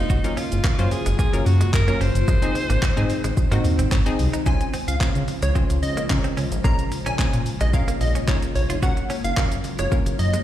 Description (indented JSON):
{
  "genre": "dance-pop",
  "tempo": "110 BPM",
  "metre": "4/4",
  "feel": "straight",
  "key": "Db major",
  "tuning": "A4 = 438 Hz",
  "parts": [
    { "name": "clear alto saxophone", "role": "melody", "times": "0.0-3.9 s", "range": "Eb4 to C5", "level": "-28 LUFS", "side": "equal", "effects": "ping-pong delay" },
    { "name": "ethereal airy pad", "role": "sustained chords", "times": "0.0-10.4 s", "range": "Db3 to C5", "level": "-30 LUFS", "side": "equal", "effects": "ensemble chorus, built-in reverb, sidechain pumping" },
    { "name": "direct-recorded clean electric guitar", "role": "riff", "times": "0.0-10.4 s", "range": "Ab3 to Gb4", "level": "-33 LUFS", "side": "right 5 dB", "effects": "lush chorus" },
    { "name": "chorused synth bass", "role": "bass", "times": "0.0-10.4 s", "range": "F1 to Db3", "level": "-22 LUFS", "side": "equal", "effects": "sidechain pumping" },
    { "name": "deep house drum kit", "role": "drums", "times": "0.1-10.4 s", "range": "handclaps, hi-hat, kick drum, shaker", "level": "-23 LUFS", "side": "equal", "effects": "overdrive" },
    { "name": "hollow square pluck", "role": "accompaniment", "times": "0.2-10.2 s", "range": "Gb3 to C5", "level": "-29 LUFS", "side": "left 3 dB", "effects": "chorus, sidechain pumping" },
    { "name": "plucky unison lead", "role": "melody", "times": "4.5-10.4 s", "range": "Db5 to Bb5", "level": "-29 LUFS", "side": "equal", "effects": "sidechain pumping, ping-pong delay" }
  ],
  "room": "little or no reverb",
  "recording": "played on a big sound system in a bare room, large studio reverb",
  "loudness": "-19 LUFS",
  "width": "side -12 dB against mid",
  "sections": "0.0-4.5 A section; 4.5-10.4 B section",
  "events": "none",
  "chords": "0.1 Gbmaj7; 2.3 Ab; 4.5 Dbmaj7; 6.6 Bbm7; 8.8 Gbmaj7"
}